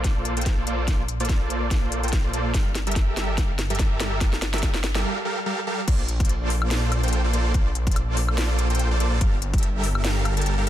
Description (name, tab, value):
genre	future bass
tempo	144 BPM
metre	4/4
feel	swing 56% on 16ths, half-time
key	unclear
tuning	A4 = 438 Hz
part	supersaw chords	riff	0.0-10.7 s	G3 to A5	-27 LUFS	right 1 dB	sidechain pumping, low-pass filter, ping-pong delay
part	wide detuned saw bass	bass	0.0-10.7 s	G1 to Bb1	-25 LUFS	equal	chorus, sidechain pumping
part	electronic kick drum	drums	0.0-9.6 s	none	-22 LUFS	equal	none
part	trap drum kit	drums	0.0-10.7 s	crash cymbal, hi-hat, snare drum, woodblock	-29 LUFS	left 2 dB	none
room	digital ambience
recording	dense, heavily limited modern master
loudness	-21 LUFS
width	side -12 dB against mid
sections	0.0-5.9 A section; 5.9-10.7 B section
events	build-up 0.0-5.9; drum fill 0.0-5.0; break 5.0-5.9; drop 5.9-10.7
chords	0.0 Bbmaj9; 2.5 Gm7; 5.7 Bb5; 5.9 Bbmaj9; 9.2 Gm7